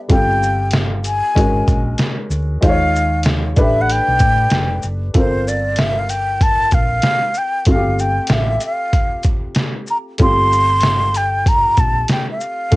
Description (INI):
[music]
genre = hip hop, jazz-hop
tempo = 95 BPM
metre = 4/4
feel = swing 63% on 16ths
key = unclear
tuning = A4 = 441 Hz
[part]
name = warm upright piano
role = accompaniment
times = 0.0-12.8 s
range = G3 to Db5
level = -23 LUFS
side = left 1 dB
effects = cassette tape
[part]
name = breathy concert flute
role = melody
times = 0.1-12.8 s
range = C5 to C6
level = -17 LUFS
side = equal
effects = cassette tape
[part]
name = hollow-body short-scale fingered electric bass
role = bass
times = 0.1-12.8 s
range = F1 to A2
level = -20 LUFS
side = equal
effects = none
[part]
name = trip hop sampler-style drum kit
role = drums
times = 0.1-12.8 s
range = hi-hat, kick drum, shaker, snare drum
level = -16 LUFS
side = equal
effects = cassette tape
[sound]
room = light reverb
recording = home recording on cassette, nothing above 11.0 kHz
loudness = -14 LUFS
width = side -20 dB against mid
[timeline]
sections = 0.0-5.1 A section; 5.1-12.8 B section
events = flute solo 5.1-12.8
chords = 0.1 G9sus4; 1.4 Ab9sus4; 2.6 Eb9sus4; 3.6 A9sus4; 5.1 Gm11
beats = | 0.10 0.73 1.36 1.99 | 2.62 3.25 3.88 4.52 | 5.15 5.78 6.41 7.04 | 7.67 8.30 8.94 9.57 | 10.20 10.83 11.46 12.10 | 12.73